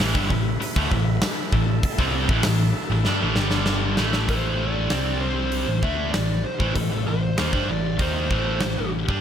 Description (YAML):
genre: hard rock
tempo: 97 BPM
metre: 4/4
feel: straight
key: A minor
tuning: A4 = 439 Hz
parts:
  - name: overdriven tonewheel organ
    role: sustained chords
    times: 0.0-4.3 s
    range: G3 to B4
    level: -33 LUFS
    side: equal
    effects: slow rotary speaker
  - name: overdriven electric guitar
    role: riff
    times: 0.0-9.2 s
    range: G2 to D#4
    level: -27 LUFS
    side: right 11 dB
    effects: none
  - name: scooped high-gain guitar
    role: riff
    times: 0.0-9.2 s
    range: G2 to D#4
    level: -27 LUFS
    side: left 7 dB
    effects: distortion
  - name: picked electric bass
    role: bass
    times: 0.0-9.2 s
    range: G1 to G2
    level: -26 LUFS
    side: equal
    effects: none
  - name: huge arena drum kit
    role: drums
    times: 0.0-9.2 s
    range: hi-hat, kick drum, snare drum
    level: -25 LUFS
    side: equal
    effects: none
  - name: smooth overdriven lead guitar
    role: melody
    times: 4.3-8.9 s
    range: A4 to E5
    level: -29 LUFS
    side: equal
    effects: none
room: little or no reverb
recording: faint mains hum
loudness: -20 LUFS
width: side -9 dB against mid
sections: 0.0-4.3 A section; 4.3-9.2 B section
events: drum fill 3.1-4.3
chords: 0.0 Am; 3.4 G5; 4.0 A5; 4.3 Am; 4.9 C5; 5.7 Am